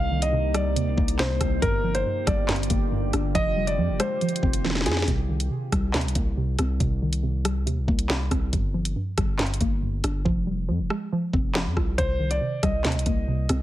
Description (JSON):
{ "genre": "hip hop, drill", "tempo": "139 BPM", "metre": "4/4", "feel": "half-time", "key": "C minor", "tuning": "A4 = 440 Hz", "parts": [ { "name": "dark concert grand piano", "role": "melody", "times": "0.0-5.0, 12.0-13.6 s", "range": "Ab4 to F5", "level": "-28 LUFS", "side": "equal", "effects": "ping-pong delay" }, { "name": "soft round pluck", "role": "accompaniment", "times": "0.0-13.6 s", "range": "G2 to F4", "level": "-28 LUFS", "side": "right 1 dB", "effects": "chorus" }, { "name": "deep dark ambient pad", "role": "sustained chords", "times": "0.0-5.1 s", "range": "C3 to G4", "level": "-33 LUFS", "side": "left 1 dB", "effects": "chorus, built-in reverb" }, { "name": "long sustained 808-style bass", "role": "bass", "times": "0.0-13.6 s", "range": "F1 to F2", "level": "-27 LUFS", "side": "equal", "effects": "none" }, { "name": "drill drum kit", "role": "drums", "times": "0.2-13.6 s", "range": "handclaps, hi-hat, kick drum, rim click, snare drum", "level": "-26 LUFS", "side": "equal", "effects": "none" } ], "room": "digital ambience", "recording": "heavily compressed radio sound, multiband compression", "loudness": "-22 LUFS", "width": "side -14 dB against mid", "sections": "0.0-5.1 A section; 5.1-13.6 B section", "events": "drum fill 4.6-5.1; hi-hats muted 10.3-12.0", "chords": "0.0 Cm7; 1.6 Gm7; 3.4 Fmadd9; 5.1 Cm7; 8.5 Gm7; 10.3 Fmadd9; 12.0 Cm7" }